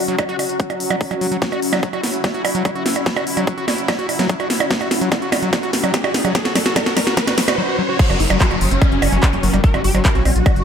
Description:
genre	psychedelic trance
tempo	146 BPM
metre	4/4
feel	straight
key	unclear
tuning	A4 = 440 Hz
part	bubbling stepped-filter texture	sustained chords	0.0-10.6 s	F#3 to F#4	-26 LUFS	left 1 dB	chorus, built-in reverb, vintage 12-bit sampler grit, sidechain pumping
part	granular cloud pad	texture	0.0-10.6 s	C#4 to F#5	-27 LUFS	left 1 dB	built-in reverb, sidechain pumping
part	screaming distorted acid line	riff	0.1-10.2 s	F#3 to F#4	-24 LUFS	left 1 dB	distortion, chorus, auto-pan, sidechain pumping, tape echo
part	techno drum kit	drums	0.1-10.6 s	crash cymbal, handclaps, hi-hat, percussion blips, snare drum	-20 LUFS	right 2 dB	none
part	electronic kick drum	drums	0.2-10.5 s	none	-17 LUFS	equal	overdrive, high-pass filter on kick
part	riser and downlifter	sound effects	2.8-10.6 s	none	-26 LUFS	right 1 dB	none
part	swarming rave lead	melody	8.0-10.6 s	F#3 to A#4	-23 LUFS	equal	chorus, phaser, sidechain pumping, ping-pong delay
part	formant-sweep wobble bass	second line	8.1-9.8 s	A#3	-36 LUFS	left 5 dB	none
part	round analog bass	bass	8.1-10.6 s	F#1 to A#1	-19 LUFS	equal	none
room	light reverb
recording	none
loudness	-15 LUFS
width	side -8 dB against mid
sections	0.0-8.0 A section; 8.0-10.6 B section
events	build-up 0.0-8.0; drum fill 1.4-7.6; riser 2.8-8.0; drop 8.0-10.6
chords	0.0 F#5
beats	0.19 0.60 1.01 | 1.42 1.83 2.24 2.65 | 3.06 3.47 3.88 4.29 | 4.71 5.12 5.53 5.94 | 6.35 6.76 7.17 7.58 | 7.99 8.40 8.82 9.23 | 9.64 10.05 10.46

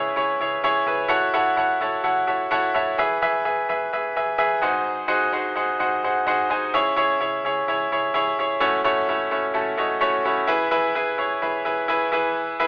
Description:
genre	piano-driven pop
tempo	128 BPM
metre	4/4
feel	swing 56% on 16ths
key	E major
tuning	A4 = 439 Hz
part	bright grand piano	accompaniment	0.0-12.7 s	G#2 to B5	-19 LUFS	equal	none
part	vintage muted fingered electric bass	bass	0.0-12.7 s	E1 to C#2	-47 LUFS	equal	none
room	moderate studio reverb, RT60 0.8 s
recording	telephone sound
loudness	-19 LUFS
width	side -25 dB against mid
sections	0.0-12.7 A section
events	grand piano fill 9.6-10.5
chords	0.0 C#m; 1.1 F#m7; 3.0 E; 4.6 G#7; 6.7 C#m; 8.6 F#m7; 10.5 E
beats	0.17 0.64 | 1.11 1.57 2.04 2.51 | 2.98 3.45 3.92 4.39 | 4.86 5.33 5.80 6.27 | 6.74 7.20 7.67 8.14 | 8.61 9.08 9.55 10.02 | 10.49 10.96 11.43 11.90 | 12.37

